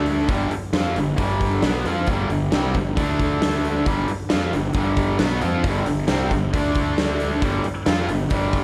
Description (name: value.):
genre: classic rock.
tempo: 135 BPM.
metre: 4/4.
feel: straight.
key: G mixolydian.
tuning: A4 = 437 Hz.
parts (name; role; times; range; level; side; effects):
cranked stack guitar; riff; 0.0-8.6 s; G2 to F4; -28 LUFS; equal; overdrive.
tight distorted guitar; riff; 0.0-8.6 s; G2 to F4; -28 LUFS; equal; distortion.
fuzz fingered electric bass; bass; 0.0-8.6 s; G1 to F2; -28 LUFS; equal; overdrive.
huge arena drum kit; drums; 0.1-8.6 s; hi-hat, kick drum, snare drum; -26 LUFS; equal; none.
room: light reverb, small room ambience.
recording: none.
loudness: -21 LUFS.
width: mono.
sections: 0.0-8.6 A section.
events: none.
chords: 0.3 G; 3.0 D5; 3.9 G; 6.5 D5; 7.4 G5.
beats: | 0.30 0.75 1.19 1.64 | 2.08 2.53 2.97 3.42 | 3.86 4.31 4.75 5.20 | 5.64 6.09 6.53 6.98 | 7.42 7.87 8.31.